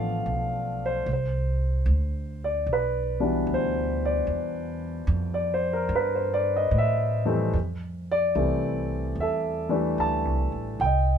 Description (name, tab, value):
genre	jazz ballad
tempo	74 BPM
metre	4/4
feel	swing 67% on 8ths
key	C major, F major from 7.5 s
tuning	A4 = 439 Hz
part	dark concert grand piano	accompaniment	0.0-11.2 s	F2 to A5	-25 LUFS	equal	none
part	upright bass	bass	0.0-11.2 s	A1 to A2	-28 LUFS	right 1 dB	none
room	light reverb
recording	minimal, uncompressed stereo recording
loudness	-24 LUFS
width	side -8 dB against mid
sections	0.0-7.5 A section; 7.5-11.2 B section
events	none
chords	0.0 G9 (rootless); 1.1 Cmaj9; 7.5 Fmaj9